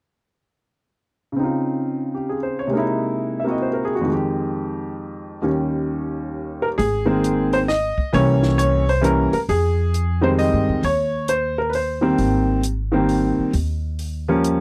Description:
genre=jazz piano trio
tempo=133 BPM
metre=3/4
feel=swing 65% on 8ths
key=Ab major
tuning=A4 = 439 Hz
part: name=clear baby grand piano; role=melody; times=1.3-14.6 s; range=Eb2 to E5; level=-22 LUFS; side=equal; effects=none
part: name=upright bass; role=bass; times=6.8-14.6 s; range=Ab1 to G2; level=-25 LUFS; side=equal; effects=none
part: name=compact cocktail drum kit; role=drums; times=6.8-14.6 s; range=hi-hat, kick drum, snare drum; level=-34 LUFS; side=equal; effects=none
room=little or no reverb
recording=dry, close 1970s-style studio recording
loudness=-21 LUFS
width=mono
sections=1.4-6.8 A section; 6.8-14.6 B section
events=none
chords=1.4 Dbmaj9; 2.7 C7alt; 4.1 Fm9; 5.4 Eb7; 6.8 Abadd9; 8.1 C7b9; 9.5 Fm9; 10.8 Eb5; 12.2 Abmaj9; 13.5 Eb9

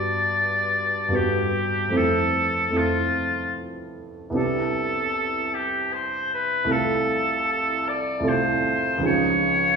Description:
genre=classical, impressionist duo for oboe and grand piano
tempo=76 BPM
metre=3/4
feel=rubato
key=unclear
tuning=A4 = 440 Hz
part: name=clear oboe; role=melody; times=0.0-9.8 s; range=F4 to D5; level=-23 LUFS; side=left 1 dB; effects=none
part: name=clear grand piano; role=accompaniment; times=0.0-9.8 s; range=C2 to B4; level=-24 LUFS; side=right 1 dB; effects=none
room=wet recital hall reverb, RT60 1.4 s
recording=heard from further back in the room, studio ambience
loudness=-21 LUFS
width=side -5 dB against mid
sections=0.0-9.8 A section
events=none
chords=0.0 Gmaj7; 2.0 Fmaj7; 4.4 Cmaj9; 6.7 Fmaj7/C; 9.0 Dbadd9

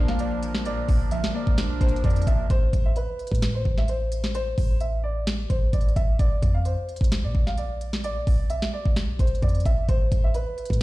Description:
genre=hip hop, trap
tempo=130 BPM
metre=4/4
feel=half-time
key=unclear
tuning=A4 = 440 Hz
part: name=dark grand piano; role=melody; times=0.0-10.8 s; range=B4 to F5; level=-31 LUFS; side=equal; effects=ping-pong delay
part: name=glassy digital keys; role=accompaniment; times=0.0-2.5 s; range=Bb2 to D4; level=-31 LUFS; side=left 1 dB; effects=chorus
part: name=accordion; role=sustained chords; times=0.0-2.5 s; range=F3 to Bb4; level=-36 LUFS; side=right 3 dB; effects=none
part: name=clean 808-style bass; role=bass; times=0.0-10.8 s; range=A1 to Bb2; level=-25 LUFS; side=equal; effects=none
part: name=trap drum kit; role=drums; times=0.1-10.8 s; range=hi-hat, kick drum, snare drum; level=-24 LUFS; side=equal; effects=overdrive, vintage 12-bit sampler grit
room=small room ambience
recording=played on a big sound system in a bare room, large studio reverb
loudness=-21 LUFS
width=side -18 dB against mid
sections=0.0-2.5 A section; 2.5-10.8 B section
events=none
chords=0.0 Bb; 2.5 Am; 6.2 Bb; 9.9 Amadd9

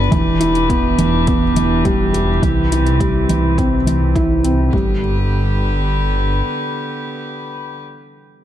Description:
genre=piano and strings electronica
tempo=104 BPM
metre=4/4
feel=straight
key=G major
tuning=A4 = 437 Hz
part: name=warm string quartet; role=sustained chords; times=0.0-7.8 s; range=D3 to B4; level=-22 LUFS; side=left 2 dB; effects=sidechain pumping, low-pass filter
part: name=felt-muted upright piano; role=riff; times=0.0-8.4 s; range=E3 to D5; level=-17 LUFS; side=right 1 dB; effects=ping-pong delay
part: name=dark detuned saw bass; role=bass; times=0.0-6.4 s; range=E1 to C2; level=-18 LUFS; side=equal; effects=sidechain pumping
part: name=electronic hi-hat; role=drums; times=0.1-4.6 s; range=none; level=-31 LUFS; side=left 3 dB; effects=overdrive, studio reverb
part: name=electronic kick drum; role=drums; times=0.1-4.8 s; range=none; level=-21 LUFS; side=equal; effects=overdrive, studio reverb
room=light reverb, small room ambience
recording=dark, warm production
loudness=-14 LUFS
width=side -11 dB against mid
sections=0.0-4.7 A section; 4.7-7.0 B section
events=filter sweep on detuned saw bass 0.0-4.7; filter sweep on string quartet 0.0-4.7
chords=0.1 Em7; 2.4 Cmaj7; 4.7 G

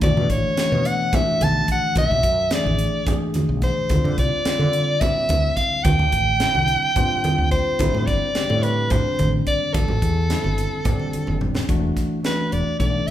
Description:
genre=electric jazz fusion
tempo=216 BPM (eighths)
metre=7/8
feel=straight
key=A dorian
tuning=A4 = 437 Hz
part: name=edgy soprano saxophone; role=melody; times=0.0-13.1 s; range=A4 to A5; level=-22 LUFS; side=equal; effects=none
part: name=bell-like tine electric piano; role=accompaniment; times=0.0-13.1 s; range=D3 to A4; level=-26 LUFS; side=left 1 dB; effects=none
part: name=woody fretless electric bass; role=bass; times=0.0-13.1 s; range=E1 to D3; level=-24 LUFS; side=equal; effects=none
part: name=crisp fusion drum kit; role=drums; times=0.0-13.1 s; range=hi-hat, kick drum, snare drum, toms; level=-25 LUFS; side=equal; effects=none
part: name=congas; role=percussion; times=0.0-11.7 s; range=none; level=-26 LUFS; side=right 1 dB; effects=none
room=moderate large studio reverb, RT60 1.2 s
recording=band playing live in one room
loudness=-18 LUFS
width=side -12 dB against mid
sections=0.0-11.7 A section; 11.7-13.1 B section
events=drum fill 11.0-11.7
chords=0.0 Bm11; 3.9 Dm11; 7.8 Am7; 11.7 E9sus4

